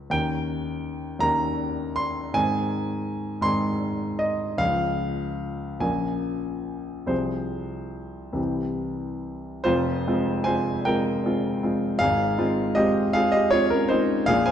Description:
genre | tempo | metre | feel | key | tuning
classical, romantic nocturne for solo piano | 46-56 BPM (dotted quarters) | 6/8 | rubato | F minor | A4 = 440 Hz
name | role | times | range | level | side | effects
warm baby grand piano | solo | 0.0-14.5 s | F1 to C6 | -22 LUFS | equal | none
room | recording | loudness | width
moderate scoring stage reverb, RT60 2.0 s | dark, warm production | -22 LUFS | side -9 dB against mid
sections
0.0-9.7 A section; 9.7-14.5 B section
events
none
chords
0.1 Eb7; 2.4 Ab; 4.6 Db; 5.8 Bbm7; 7.1 Fm/C; 8.4 C; 9.7 Fm; 12.0 Fm/Ab

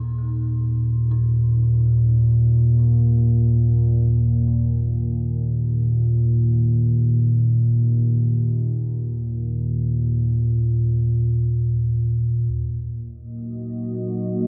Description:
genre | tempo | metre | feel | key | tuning
dark ambient drone | free time | none | none | unclear | A4 = 440 Hz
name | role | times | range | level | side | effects
dark detuned synth bell | arpeggios | 0.0-12.6 s | Eb4 to Ab4 | -47 LUFS | equal | chorus, delay
deep rumbling drone | drone | 0.0-14.5 s | Eb2 to Bb2 | -20 LUFS | equal | built-in reverb
deep dark ambient pad | sustained chords | 12.9-14.5 s | Bb3 to Eb5 | -28 LUFS | equal | chorus, built-in reverb
room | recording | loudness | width
digital ambience | worn, warbling old tape, cassette tape, warbly pitch drift | -20 LUFS | mono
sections
0.0-12.5 A section; 12.5-14.5 B section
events
fade-in on synth bell 0.0-12.5; filter sweep on synth drone 12.5-14.5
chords
0.0 Eb5; 12.5 Ebm

